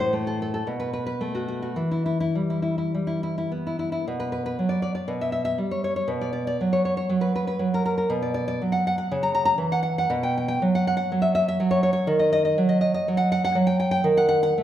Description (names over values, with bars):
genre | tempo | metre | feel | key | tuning
romantic piece for solo classical guitar | 52-62 BPM | 2/4 | rubato | E minor, B minor from 4.0 s | A4 = 437 Hz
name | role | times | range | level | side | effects
nylon-string guitar | solo | 0.0-14.6 s | A2 to A#5 | -21 LUFS | equal | none
room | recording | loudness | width
wet recital hall reverb, RT60 1.6 s | recorded in a church or concert hall | -22 LUFS | side -11 dB against mid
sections
0.0-4.0 A section; 4.0-14.6 B section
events
none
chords
0.0 N.C.; 0.7 F#madd11/B; 1.8 Em; 4.0 B5; 5.1 Em6/B; 6.1 B5; 9.1 C#madd11; 10.1 B5; 12.1 D#m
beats
0.67 | 1.78 2.92 | 4.03 5.07 | 6.10 7.11 | 8.12 9.13 | 10.12 11.10 | 12.07 13.07 | 14.06